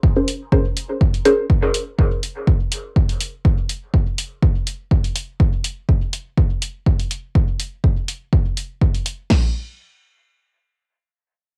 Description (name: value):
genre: dub techno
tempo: 123 BPM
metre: 4/4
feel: swing 54% on 16ths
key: unclear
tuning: A4 = 444 Hz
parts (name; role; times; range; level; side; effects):
- filtered dub chord stab; stabs; 0.0-1.5 s; Db4 to C5; -21 LUFS; equal; chorus, phaser, sidechain pumping, cassette tape, dub echo
- punchy analog drum machine; drums; 0.0-9.4 s; crash cymbal, kick drum, snare drum; -19 LUFS; equal; cassette tape
- electronic hi-hat; drums; 0.3-9.2 s; none; -28 LUFS; equal; cassette tape
room: little or no reverb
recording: home recording on cassette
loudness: -20 LUFS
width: mono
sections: 0.0-9.3 A section; 9.3-11.6 B section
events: filter sweep on synth stab 0.0-1.5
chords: 0.0 Bbm9; 1.5 N.C.